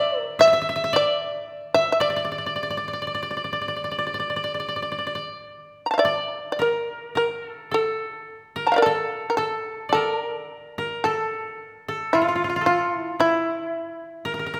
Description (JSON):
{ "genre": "japanese traditional, Japanese chamber music", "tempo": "49-57 BPM", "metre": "4/4", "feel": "rubato", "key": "D hirajoshi", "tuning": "A4 = 442 Hz", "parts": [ { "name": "shamisen", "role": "melody", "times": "0.0-14.6 s", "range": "E4 to Bb5", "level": "-24 LUFS", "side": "equal", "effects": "none" }, { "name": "koto", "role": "second line", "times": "0.0-14.6 s", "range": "E4 to E5", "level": "-29 LUFS", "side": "equal", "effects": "none" } ], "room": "moderate concert hall reverb, RT60 1.9 s", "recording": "none", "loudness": "-24 LUFS", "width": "mono", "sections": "0.0-6.6 A section; 6.6-14.6 B section", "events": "none", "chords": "none" }